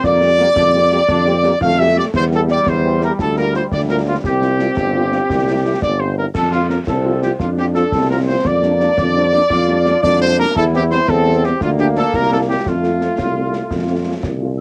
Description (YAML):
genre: military-style march for wind band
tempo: 114 BPM (dotted quarters)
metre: 6/8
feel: straight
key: F major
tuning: A4 = 440 Hz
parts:
  - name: warm trumpet section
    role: melody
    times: 0.0-14.2 s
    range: F4 to F5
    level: -19 LUFS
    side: equal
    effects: cassette tape
  - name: clear trombone section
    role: sustained chords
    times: 0.0-14.5 s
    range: G3 to F4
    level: -26 LUFS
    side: equal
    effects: none
  - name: warm tuba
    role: bass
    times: 0.0-14.6 s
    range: G1 to F2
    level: -21 LUFS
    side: equal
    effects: none
  - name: concert snare drum, concert bass drum and clash cymbals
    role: drums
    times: 0.0-14.4 s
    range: none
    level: -27 LUFS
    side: equal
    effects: cassette tape
  - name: dark French horn section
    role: accompaniment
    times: 0.2-14.5 s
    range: E3 to G4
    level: -26 LUFS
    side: equal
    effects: none
room: light reverb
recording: home recording on cassette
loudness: -16 LUFS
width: mono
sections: 0.0-14.6 A section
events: none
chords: 0.0 Gm7/F; 2.1 C/E; 3.2 Bb/D; 4.2 Csus4; 5.3 C; 6.4 F; 8.5 Gm7/F; 10.6 C/E; 11.6 Bb/D; 12.1 C7; 12.7 F